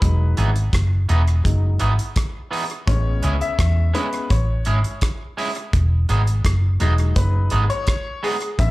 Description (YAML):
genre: roots reggae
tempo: 84 BPM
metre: 4/4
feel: straight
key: E major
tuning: A4 = 441 Hz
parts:
  - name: clear grand piano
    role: stabs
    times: 0.0-8.7 s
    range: F#3 to E5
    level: -27 LUFS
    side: left 4 dB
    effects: slapback echo
  - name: vintage muted fingered electric bass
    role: bass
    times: 0.0-8.7 s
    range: E1 to E2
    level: -17 LUFS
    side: equal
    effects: none
  - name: damped 70s drum kit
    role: drums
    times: 0.0-8.7 s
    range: hi-hat, kick drum, rim click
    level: -22 LUFS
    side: equal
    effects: none
  - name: electric guitar at the edge of break-up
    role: accompaniment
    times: 0.4-8.4 s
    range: E3 to G#4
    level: -27 LUFS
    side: right 3 dB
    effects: wide subtle chorus, tape echo, slapback echo
room: little or no reverb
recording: live gig heard through the venue's PA, club reverb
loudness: -17 LUFS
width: side -19 dB against mid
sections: 0.0-8.7 A section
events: grand piano solo 0.0-8.7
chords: 0.0 Emaj7; 2.9 Amaj7; 5.7 Emaj7